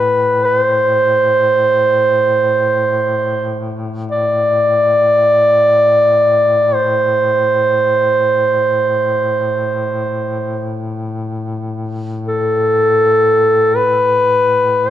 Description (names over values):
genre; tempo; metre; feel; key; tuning
caucasian folk, Caucasian lament; free time; none; none; A minor; A4 = 440 Hz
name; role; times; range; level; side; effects
breathy duduk; melody; 0.0-14.9 s; A4 to D5; -12 LUFS; equal; none
warm duduk; drone; 0.0-14.9 s; A2; -23 LUFS; left 3 dB; none
room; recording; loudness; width
moderate scoring stage reverb, RT60 1.5 s; dark, warm production; -12 LUFS; side -11 dB against mid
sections
0.0-14.9 A section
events
none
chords
none